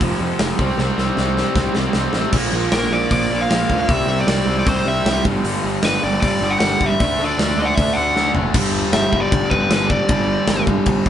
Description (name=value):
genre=punk rock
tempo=155 BPM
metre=4/4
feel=straight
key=unclear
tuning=A4 = 440 Hz
part: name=overdriven semi-hollow guitar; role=riff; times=0.0-11.1 s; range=F2 to D4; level=-23 LUFS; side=right 5 dB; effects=none
part: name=raw garage guitar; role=riff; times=0.0-11.1 s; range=F2 to D4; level=-23 LUFS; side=left 5 dB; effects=overdrive
part: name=overdriven picked electric bass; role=bass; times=0.0-11.1 s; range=F1 to F2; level=-24 LUFS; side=equal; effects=none
part: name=big rock drum kit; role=drums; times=0.0-11.1 s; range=crash cymbal, hi-hat, kick drum, snare drum, toms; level=-21 LUFS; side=equal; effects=none
part: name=biting lead guitar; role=melody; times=2.7-10.6 s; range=Bb4 to F#5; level=-21 LUFS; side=equal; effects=overdrive
room=moderate stone room reverb, RT60 1.2 s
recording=band playing live in one room, nothing above 11.0 kHz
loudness=-15 LUFS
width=side -10 dB against mid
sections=0.0-2.3 A section; 2.3-8.5 B section; 8.5-11.1 C section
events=drum fill 0.8-2.3, 8.2-8.5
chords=0.0 F5; 0.6 C5; 2.3 Bb; 3.9 C; 5.2 G5; 7.0 D; 8.5 G5